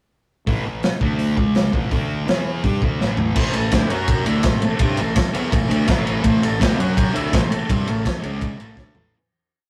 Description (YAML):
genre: garage rock duo or trio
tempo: 166 BPM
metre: 4/4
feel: straight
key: A mixolydian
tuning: A4 = 443 Hz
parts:
  - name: thick fuzz guitar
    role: riff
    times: 0.5-9.1 s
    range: A2 to G4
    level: -24 LUFS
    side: equal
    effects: distortion
  - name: fuzz fingered electric bass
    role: bass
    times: 0.5-9.1 s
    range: A1 to G2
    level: -31 LUFS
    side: equal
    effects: none
  - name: crunchy breakbeat drum kit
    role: drums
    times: 0.5-9.0 s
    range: crash cymbal, hi-hat, kick drum, ride cymbal, snare drum, toms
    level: -22 LUFS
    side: equal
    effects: none
  - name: overdriven combo organ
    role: melody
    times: 3.3-9.1 s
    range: C#3 to D5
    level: -32 LUFS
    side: equal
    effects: none
  - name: overdriven combo organ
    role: sustained chords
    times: 3.3-9.1 s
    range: G#3 to C#5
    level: -35 LUFS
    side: equal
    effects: none
room: moderate small room reverb, RT60 0.5 s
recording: rough rehearsal-room recording, warm saturation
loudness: -20 LUFS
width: mono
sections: 0.5-3.4 intro; 3.4-9.1 pre-chorus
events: drum fill 3.0-3.4, 8.8-9.1; fade-out 7.4-9.1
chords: 0.5 A5; 1.0 D5; 1.4 C#5; 1.7 A5; 1.9 D5; 2.3 E5; 2.6 A5; 3.4 A; 3.9 F#5; 4.3 A; 6.8 F#5; 7.2 A; 8.2 C#5; 8.6 A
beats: | 0.47 0.83 1.19 1.55 | 1.92 2.28 2.64 3.00 | 3.36 3.72 4.08 4.45 | 4.81 5.17 5.53 5.89 | 6.25 6.62 6.98 7.34 | 7.70 8.06 8.42 8.78